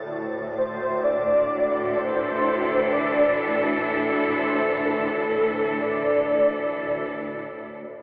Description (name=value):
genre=dark ambient drone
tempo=63 BPM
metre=4/4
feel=straight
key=unclear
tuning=A4 = 440 Hz
part: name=swarming drone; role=drone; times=0.0-8.0 s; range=D2 to A2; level=-30 LUFS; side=equal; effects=built-in reverb
part: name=icy glass pad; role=texture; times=0.0-8.0 s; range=D5 to G5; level=-41 LUFS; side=equal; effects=chorus, built-in reverb
part: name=rich studio cello section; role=sustained chords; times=0.1-7.7 s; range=A2 to A4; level=-25 LUFS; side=equal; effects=none
part: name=mellow horn-like synth lead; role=melody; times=0.6-7.2 s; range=A4 to D5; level=-24 LUFS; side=equal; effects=ensemble chorus, dub echo
room=wet echo chamber reverb, RT60 2.2 s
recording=echo-heavy mix, telephone sound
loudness=-20 LUFS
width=side -33 dB against mid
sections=0.0-7.7 A section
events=fade-out on ambient pad 0.0-7.7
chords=0.0 Dsus2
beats=| 0.10 1.05 1.99 2.93 | 3.87 4.82 5.78 6.75 | 7.71